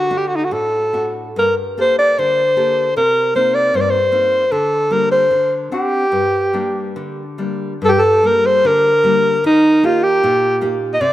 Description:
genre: fado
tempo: 69-78 BPM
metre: 2/4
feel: rubato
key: G minor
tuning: A4 = 437 Hz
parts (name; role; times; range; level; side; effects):
- breathy alto saxophone; melody; 0.0-11.1 s; Eb4 to Eb5; -14 LUFS; equal; none
- nylon-string guitar; accompaniment; 0.0-11.1 s; G2 to F#5; -22 LUFS; left 2 dB; none
room: moderate plate reverb, RT60 2.7 s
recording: rough home demo mix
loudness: -13 LUFS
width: side -14 dB against mid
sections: 0.0-7.8 A section; 7.8-11.1 A section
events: none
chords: 0.0 D; 1.4 Gmadd9; 3.0 Cm7; 4.5 Gm/D; 5.3 D7; 6.1 Gm; 9.4 Eb

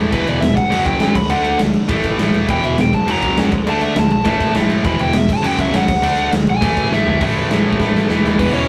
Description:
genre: punk rock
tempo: 203 BPM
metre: 4/4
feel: straight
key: unclear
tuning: A4 = 440 Hz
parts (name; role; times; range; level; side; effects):
- cranked stack guitar; riff; 0.0-8.7 s; E2 to D4; -30 LUFS; equal; none
- thick fuzz guitar; riff; 0.0-8.4 s; E2 to D4; -30 LUFS; equal; none
- tight distorted guitar; riff; 0.0-8.7 s; E2 to D4; -22 LUFS; equal; distortion
- growling picked electric bass; bass; 0.0-8.6 s; E1 to D3; -27 LUFS; equal; overdrive
- biting lead guitar; melody; 0.1-8.7 s; B3 to B5; -22 LUFS; equal; overdrive
- big rock drum kit; drums; 0.1-8.5 s; crash cymbal, kick drum, snare drum, toms; -20 LUFS; equal; none
room: light reverb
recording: rough rehearsal-room recording, tube saturation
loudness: -16 LUFS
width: mono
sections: 0.0-7.2 A section; 7.2-8.4 B section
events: lead electric guitar solo 0.0-7.2; drum fill 6.9, 7.8-8.4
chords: 0.1 E5; 0.6 F#5; 1.2 D; 1.9 A5; 2.5 E5; 2.9 F#; 3.5 D5; 4.3 A5; 4.8 E5; 5.3 F#5; 5.9 D; 6.6 A5

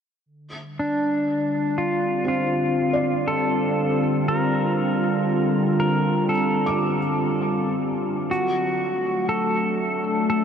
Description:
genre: ambient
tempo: 60 BPM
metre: 4/4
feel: straight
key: Bb major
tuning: A4 = 440 Hz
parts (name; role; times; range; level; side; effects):
- warbly tape-like pad; sustained chords; 0.3-10.4 s; D3 to F#4; -23 LUFS; equal; chorus, built-in reverb
- pedal steel guitar; melody; 0.8-10.4 s; D4 to Bb4; -24 LUFS; equal; analog delay
- felt-muted upright piano; arpeggios; 2.2-10.4 s; C4 to D6; -31 LUFS; right 2 dB; lush chorus, analog delay
room: wet huge ambient reverb, RT60 8.8 s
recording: dreamy mix soaked in reverb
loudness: -20 LUFS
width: side -7 dB against mid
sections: 0.3-10.4 A section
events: none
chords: 0.3 Bbmaj7; 8.3 D

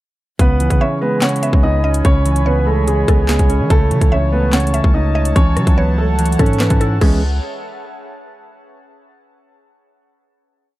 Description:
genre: hip hop, drill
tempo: 145 BPM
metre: 4/4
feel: half-time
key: C# minor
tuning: A4 = 441 Hz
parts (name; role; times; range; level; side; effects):
- dark baby grand piano; melody; 0.4-7.2 s; G#3 to D#5; -20 LUFS; right 2 dB; none
- mellow electric guitar; accompaniment; 0.4-7.2 s; C#3 to C#5; -19 LUFS; right 1 dB; none
- warbly tape-like pad; sustained chords; 0.9-7.2 s; C#5 to B5; -27 LUFS; equal; chorus, built-in reverb
- long sustained 808-style bass; bass; 0.4-7.4 s; C#2 to E3; -17 LUFS; equal; none
- drill drum kit; drums; 0.4-7.1 s; crash cymbal, handclaps, hi-hat, kick drum, rim click, snare drum; -16 LUFS; equal; overdrive
- mallet-like synth pluck; second line; 0.8-7.2 s; G#4 to F#5; -26 LUFS; left 1 dB; chorus, analog delay
room: little or no reverb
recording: dark, warm production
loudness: -12 LUFS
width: side -17 dB against mid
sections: 0.4-7.0 hook; 7.0-8.7 final chord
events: none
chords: 0.4 C#m7; 3.7 A/C#; 5.4 F#m7/C#; 7.0 C#m7

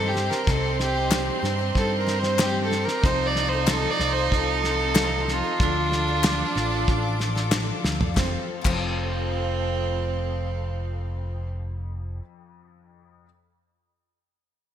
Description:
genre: indie folk with a building arrangement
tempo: 94 BPM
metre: 4/4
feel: straight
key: F mixolydian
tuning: A4 = 440 Hz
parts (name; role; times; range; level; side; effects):
- dark fiddle; melody; 0.0-7.5 s; F4 to D5; -26 LUFS; equal; none
- warm fiddle; second line; 0.0-11.5 s; C4 to Eb4; -29 LUFS; right 8 dB; none
- picked twelve-string acoustic guitar; accompaniment; 0.0-12.3 s; C3 to A4; -33 LUFS; left 7 dB; analog chorus
- warm upright piano; accompaniment; 0.0-13.3 s; C2 to Eb5; -39 LUFS; left 8 dB; ensemble chorus
- dark chamber string section; sustained chords; 0.0-11.5 s; F3 to D6; -35 LUFS; left 3 dB; none
- picked electric bass; bass; 0.0-12.2 s; F1 to G2; -28 LUFS; equal; none
- cloth-damped thuddy drum kit; drums; 0.2-8.8 s; crash cymbal, kick drum, snare drum, toms; -26 LUFS; equal; gated reverb
- group handclap; percussion; 1.1-8.8 s; none; -32 LUFS; left 11 dB; none
room: light reverb, studio reverb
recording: bright 1980s-style digital production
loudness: -22 LUFS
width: side -9 dB against mid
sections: 0.0-8.2 A section; 8.2-10.7 B section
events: drum fill 7.9-8.2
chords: 0.0 Cm; 3.0 F/C; 5.6 Dm; 8.2 F

